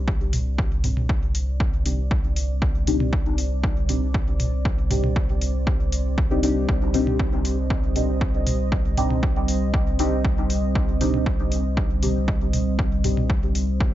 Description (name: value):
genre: dub techno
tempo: 118 BPM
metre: 4/4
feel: straight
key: C minor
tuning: A4 = 438 Hz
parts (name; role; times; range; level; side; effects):
- deep dark ambient pad; sustained chords; 0.0-13.9 s; G3 to Eb5; -29 LUFS; right 1 dB; chorus, built-in reverb, sidechain pumping
- soft dub sub bass; bass; 0.0-13.9 s; C2; -25 LUFS; equal; sidechain pumping
- electronic kick drum; drums; 0.1-13.9 s; none; -24 LUFS; equal; overdrive
- electronic hi-hat; drums; 0.3-13.7 s; none; -32 LUFS; left 2 dB; overdrive
- electronic toms; percussion; 0.3-13.3 s; none; -30 LUFS; right 1 dB; overdrive, sidechain pumping on toms
- deep mellow chord stab; stabs; 0.8-13.3 s; C4 to G4; -28 LUFS; left 1 dB; chorus, phaser, sidechain pumping, dub echo
room: little or no reverb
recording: nothing above 7.5 kHz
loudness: -20 LUFS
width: side -13 dB against mid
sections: 0.0-13.9 A section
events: none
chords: 0.0 Cmadd9